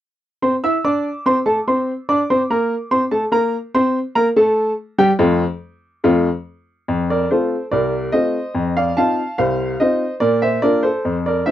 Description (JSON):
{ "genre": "ragtime piano", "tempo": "72 BPM", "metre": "2/4", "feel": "straight", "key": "F major", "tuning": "A4 = 436 Hz", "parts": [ { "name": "clear upright piano", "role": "solo", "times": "0.4-11.5 s", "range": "C2 to E6", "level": "-15 LUFS", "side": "equal", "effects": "none" } ], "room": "light reverb", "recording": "dry, close 1970s-style studio recording", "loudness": "-16 LUFS", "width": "side -12 dB against mid", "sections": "0.2-6.9 A section; 6.9-11.5 B section", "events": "none", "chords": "0.2 F; 8.5 F5; 10.2 Bb" }